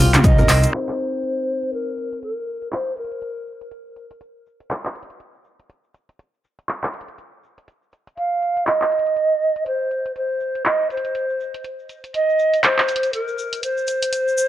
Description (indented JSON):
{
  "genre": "afro house",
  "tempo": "121 BPM",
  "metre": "4/4",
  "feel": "swing 59% on 16ths",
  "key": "C minor",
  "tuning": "A4 = 440 Hz",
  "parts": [
    { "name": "kora", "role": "arpeggios", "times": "0.0-2.3 s", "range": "G3 to C5", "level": "-26 LUFS", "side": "left 1 dB", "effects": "sidechain pumping, analog delay" },
    { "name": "dark detuned saw bass", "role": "bass", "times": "0.0-0.7 s", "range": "C2", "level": "-17 LUFS", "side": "equal", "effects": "tube saturation, sidechain pumping" },
    { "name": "deep house drum kit", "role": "drums", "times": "0.1-14.2 s", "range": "crash cymbal, handclaps, hi-hat, toms", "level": "-21 LUFS", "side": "equal", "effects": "overdrive" },
    { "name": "congas", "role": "percussion", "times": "0.1-0.5 s", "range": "none", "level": "-20 LUFS", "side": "right 1 dB", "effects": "none" },
    { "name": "tube shaker", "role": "percussion", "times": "0.1-14.5 s", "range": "none", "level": "-32 LUFS", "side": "left 2 dB", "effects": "none" },
    { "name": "large pan pipes", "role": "melody", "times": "0.2-3.7, 8.2-14.5 s", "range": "Bb4 to F5", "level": "-21 LUFS", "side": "right 1 dB", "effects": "analog delay" }
  ],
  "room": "light reverb, small room ambience",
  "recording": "dry, gritty hardware recording, low-pass filter",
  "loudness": "-19 LUFS",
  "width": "side -13 dB against mid",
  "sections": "0.7-14.5 A section",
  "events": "filter sweep 0.7-14.5",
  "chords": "0.0 Cm7; 0.7 N.C."
}